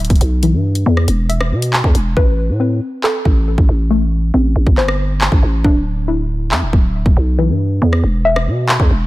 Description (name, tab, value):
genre	hip hop, drill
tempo	138 BPM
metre	4/4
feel	half-time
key	A minor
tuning	A4 = 440 Hz
part	soft round pluck	arpeggios	0.0-9.1 s	E3 to E5	-19 LUFS	left 2 dB	chorus, ping-pong delay
part	growling 808-style bass	bass	0.0-9.1 s	D1 to B2	-15 LUFS	equal	none
part	drill drum kit	drums	0.0-8.9 s	handclaps, hi-hat, kick drum, rim click	-15 LUFS	equal	none
room	digital ambience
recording	none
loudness	-12 LUFS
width	side -18 dB against mid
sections	0.0-9.1 A section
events	hi-hats muted 2.2-9.1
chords	0.4 E5; 2.2 Amadd9; 5.6 Dsus2; 7.4 E5